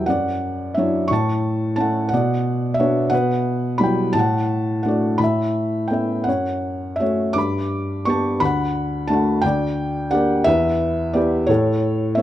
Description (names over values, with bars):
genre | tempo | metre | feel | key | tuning
classical, lyrical solo piano | 58 BPM (dotted quarters) | 6/8 | rubato | D major | A4 = 440 Hz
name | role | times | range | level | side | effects
felt-muted upright piano | solo | 0.0-12.2 s | D2 to D6 | -18 LUFS | equal | none
room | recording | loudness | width
light reverb | close, detailed microphones | -18 LUFS | side -13 dB against mid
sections
0.0-12.2 A section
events
none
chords
0.1 Dadd9/F#; 1.1 A; 2.1 Bm; 3.1 Emadd9/B; 4.2 D/A; 5.2 Aadd9; 6.3 F#m; 7.4 G; 8.4 D; 9.4 Gm/D; 10.5 Em; 11.5 A